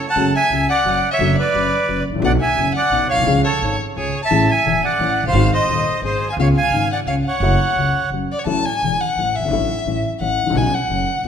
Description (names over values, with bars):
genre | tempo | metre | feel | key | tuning
tango | 174 BPM | 3/4 | rubato | F# minor | A4 = 440 Hz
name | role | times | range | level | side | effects
bandoneon | melody | 0.0-8.1 s | G#4 to A5 | -19 LUFS | right 3 dB | none
warm violin | second line | 0.0-11.2 s | B#4 to A5 | -21 LUFS | left 3 dB | none
dark baby grand piano | accompaniment | 0.2-11.3 s | D#1 to G#4 | -21 LUFS | left 3 dB | none
upright bass | bass | 0.2-11.3 s | E1 to D#2 | -23 LUFS | right 2 dB | none
room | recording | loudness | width
moderate concert hall reverb, RT60 1.9 s | minimal, uncompressed stereo recording | -15 LUFS | side -8 dB against mid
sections
0.2-8.5 A section; 8.5-11.3 B section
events
violin solo 8.5-11.3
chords
0.2 F#madd9; 1.2 Dmaj7/F#; 2.2 Bm7; 3.3 C#; 4.3 Amaj7; 5.3 G#7; 6.4 C#7; 7.4 F#m7; 8.5 A6; 9.5 Dadd9/A; 10.6 Badd9